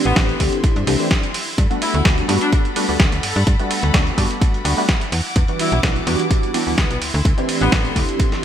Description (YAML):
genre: filtered disco house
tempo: 127 BPM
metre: 4/4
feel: swing 53% on 16ths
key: G major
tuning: A4 = 439 Hz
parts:
  - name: funky polysynth comp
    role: accompaniment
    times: 0.0-8.4 s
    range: E3 to G4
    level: -22 LUFS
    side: equal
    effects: chorus, tremolo, phaser, sidechain pumping
  - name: bright symphonic string section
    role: sustained chords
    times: 0.0-8.4 s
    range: E4 to D6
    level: -28 LUFS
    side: left 2 dB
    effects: sidechain pumping
  - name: clear horn section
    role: melody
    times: 0.1-2.6, 5.6-8.0 s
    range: B3 to E4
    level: -26 LUFS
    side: left 1 dB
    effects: sidechain pumping, ping-pong delay
  - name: slap-like FM bass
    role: bass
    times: 0.1-8.1 s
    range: A1 to G2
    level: -21 LUFS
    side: equal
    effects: sidechain pumping
  - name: dusty soul sampler-style drum kit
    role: drums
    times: 0.1-8.4 s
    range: hi-hat, ride cymbal, snare drum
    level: -22 LUFS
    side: right 1 dB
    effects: gated reverb
  - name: electronic kick drum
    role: drums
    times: 0.2-8.3 s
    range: none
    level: -18 LUFS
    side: equal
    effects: none
room: light reverb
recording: bright 1980s-style digital production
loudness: -15 LUFS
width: side -10 dB against mid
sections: 0.0-8.4 A section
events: none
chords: 0.0 D9sus4; 1.6 Gmaj9; 5.1 Em9; 7.0 D9sus4